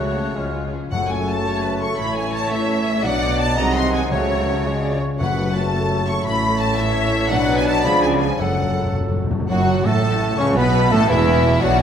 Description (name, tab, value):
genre	classical, dramatic, fast romantic movement for symphony orchestra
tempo	112 BPM (dotted quarters)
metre	6/8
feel	straight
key	F# minor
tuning	A4 = 441 Hz
part	clear symphonic violin section	melody	0.0-11.8 s	C#5 to C#6	-27 LUFS	left 2 dB	none
part	dark cor anglais	second line	0.0-11.8 s	E4 to F#5	-28 LUFS	right 1 dB	none
part	mellow large flute ensemble	second line	0.0-11.8 s	C#5 to F#6	-27 LUFS	left 3 dB	none
part	rich symphonic violin section	second line	0.0-11.8 s	E4 to C#6	-28 LUFS	left 3 dB	none
part	clear bassoon	accompaniment	0.0-11.8 s	E3 to C#4	-27 LUFS	right 2 dB	none
part	clear symphonic viola section	accompaniment	0.0-11.6 s	E3 to D#5	-28 LUFS	right 1 dB	none
part	dark French horn section	sustained chords	0.0-11.8 s	E3 to F#4	-27 LUFS	left 4 dB	none
part	warm trombone section	sustained chords	0.0-11.8 s	E2 to B3	-28 LUFS	right 2 dB	none
part	concert harp	arpeggios	0.0-11.8 s	F#2 to A4	-29 LUFS	left 7 dB	none
part	clear symphonic double bass section	bass	0.0-11.8 s	E1 to C#2	-24 LUFS	right 3 dB	none
part	rich symphonic cello section	bass	0.0-11.8 s	E2 to C#3	-26 LUFS	right 2 dB	none
part	timpani	percussion	0.0-1.4, 4.1-5.7, 8.4-9.5 s	F#2 to C#3	-28 LUFS	left 2 dB	none
room	wet concert hall reverb, RT60 1.7 s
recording	none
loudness	-17 LUFS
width	side -8 dB against mid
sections	0.9-9.5 A section; 9.5-11.8 B section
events	timpani fill 8.4-9.5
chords	0.4 C#; 0.9 F#m; 2.0 A; 3.0 Bm; 3.6 G#7/B#; 4.1 F#m/C#; 4.7 C#; 5.2 F#m; 6.3 A; 7.3 Bm; 7.9 C#7b9; 8.4 F#m; 10.6 A5